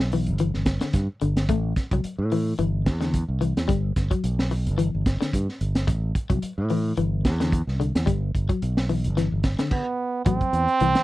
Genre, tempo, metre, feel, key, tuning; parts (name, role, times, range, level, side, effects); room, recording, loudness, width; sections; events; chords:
afrobeat; 109 BPM; 4/4; swing 55% on 16ths; A dorian; A4 = 440 Hz
fingered electric bass; bass; 0.0-10.9 s; G1 to A2; -24 LUFS; right 1 dB
crunchy breakbeat drum kit; drums; 0.0-11.0 s; crash cymbal, hi-hat, kick drum, snare drum; -25 LUFS; equal
electric guitar at the edge of break-up; arpeggios; 0.1-11.0 s; D3 to A3; -27 LUFS; left 5 dB; harmonic tremolo
brilliant trombone; melody; 9.7-11.0 s; B3 to C4; -22 LUFS; right 4 dB
little or no reverb; dry, close 1970s-style studio recording; -22 LUFS; side -17 dB against mid
0.0-10.3 A section
stop 9.7-10.3
0.0 G; 1.5 Am7; 3.7 G; 5.9 Am7; 8.1 G; 10.3 Am